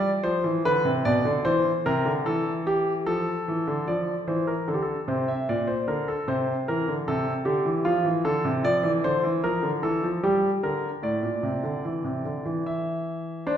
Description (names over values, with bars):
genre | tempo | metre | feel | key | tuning
classical, baroque-style two-part invention for grand piano | 75 BPM | 3/4 | straight | F major | A4 = 440 Hz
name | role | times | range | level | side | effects
clear concert grand piano | solo | 0.0-13.6 s | A2 to E5 | -23 LUFS | equal | none
room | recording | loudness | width
wet recital hall reverb, RT60 1.4 s | recorded in a church or concert hall | -23 LUFS | side -9 dB against mid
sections
0.0-3.9 A section; 3.9-13.5 B section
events
none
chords
0.0 F5; 0.6 Bm; 1.4 C; 3.1 F; 3.9 Dm7; 5.5 Bbmaj9; 6.3 C7; 7.9 F; 8.6 Dm; 10.2 Gm; 11.0 Asus4; 12.6 N.C.